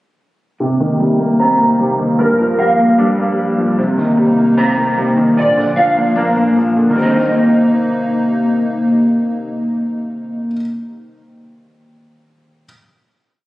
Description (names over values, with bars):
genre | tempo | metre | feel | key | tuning
hip hop, trap | 151 BPM | 4/4 | half-time | C minor | A4 = 440 Hz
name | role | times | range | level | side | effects
dark baby grand piano | accompaniment | 0.6-12.7 s | G2 to D4 | -17 LUFS | equal | low-pass filter
hollow soft pad | sustained chords | 0.6-10.5 s | G2 to Eb4 | -18 LUFS | equal | chorus, low-pass filter
mellow electric guitar | arpeggios | 0.6-10.6 s | C3 to Bb5 | -15 LUFS | equal | ensemble chorus, low-pass filter, digital delay
room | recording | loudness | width
moderate lush hall reverb, RT60 2.7 s | recorded on a phone in the room, studio reverb, compression | -12 LUFS | side -17 dB against mid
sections
0.6-7.0 breakdown; 7.0-10.1 final chord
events
filter sweep 0.6-7.0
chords
0.6 Cm7; 2.2 Gm7; 3.8 Cm7; 5.4 Bb; 7.0 Cm7